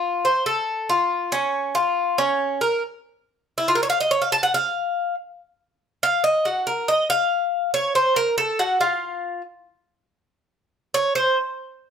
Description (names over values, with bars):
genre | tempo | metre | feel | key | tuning
latin | 140 BPM | 4/4 | straight | Bb harmonic minor | A4 = 440 Hz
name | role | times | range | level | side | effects
Cuban tres | solo | 0.0-11.4 s | Db4 to A5 | -19 LUFS | equal | none
room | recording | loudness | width
moderate studio reverb, RT60 0.8 s | none | -19 LUFS | side -7 dB against mid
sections
0.0-2.8 A section; 2.8-11.9 B section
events
Cuban tres solo 2.8-11.9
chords
none